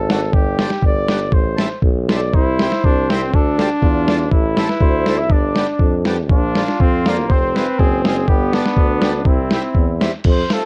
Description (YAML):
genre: alpine folk, alpine dance band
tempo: 121 BPM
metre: 2/4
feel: rubato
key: C major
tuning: A4 = 440 Hz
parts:
  - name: warm flugelhorn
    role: melody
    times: 0.0-10.7 s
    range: D4 to E5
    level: -26 LUFS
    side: equal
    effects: cassette tape
  - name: clear tuba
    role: bass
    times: 0.0-10.4 s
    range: F1 to F2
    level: -23 LUFS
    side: equal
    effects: none
  - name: accordion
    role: accompaniment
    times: 0.1-10.6 s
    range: G3 to A4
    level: -28 LUFS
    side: equal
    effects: cassette tape
  - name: lo-fi sampler-style drum kit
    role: drums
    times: 0.1-10.6 s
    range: crash cymbal, hi-hat, kick drum, snare drum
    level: -19 LUFS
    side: equal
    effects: cassette tape
  - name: mellow trumpet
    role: second line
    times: 2.3-10.0 s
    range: Bb3 to E4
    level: -24 LUFS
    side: equal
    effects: cassette tape, analog delay
room: little or no reverb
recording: home recording on cassette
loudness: -16 LUFS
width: mono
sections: 0.0-10.3 A section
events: none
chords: 0.3 Gsus4; 0.8 G; 1.3 Am; 2.3 C; 3.3 Dmadd9; 4.3 Am; 5.3 G; 6.3 Bb; 7.3 Fm; 8.3 G; 9.3 C